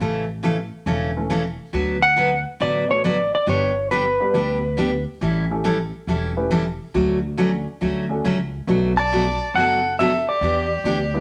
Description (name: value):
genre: country, western swing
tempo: 138 BPM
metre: 4/4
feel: swing 67% on 8ths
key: D major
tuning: A4 = 440 Hz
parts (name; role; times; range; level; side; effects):
- picked steel-string acoustic guitar; accompaniment; 0.0-11.0 s; B2 to B4; -24 LUFS; equal; none
- upright bass; bass; 0.0-11.2 s; E1 to E2; -30 LUFS; equal; none
- dark upright piano; accompaniment; 1.2-11.2 s; E3 to B4; -29 LUFS; equal; none
- clean lap steel guitar; melody; 2.0-5.0, 9.0-11.2 s; B4 to A5; -22 LUFS; equal; none
- clear fiddle; second line; 9.0-11.2 s; G4 to D5; -31 LUFS; equal; none
room: wet studio reverb, RT60 0.8 s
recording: none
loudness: -21 LUFS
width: mono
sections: 0.0-11.2 A section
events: none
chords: 0.0 A; 1.7 D6; 3.5 G; 5.2 A7; 6.9 Dmaj7; 8.7 Bm7; 10.4 Em7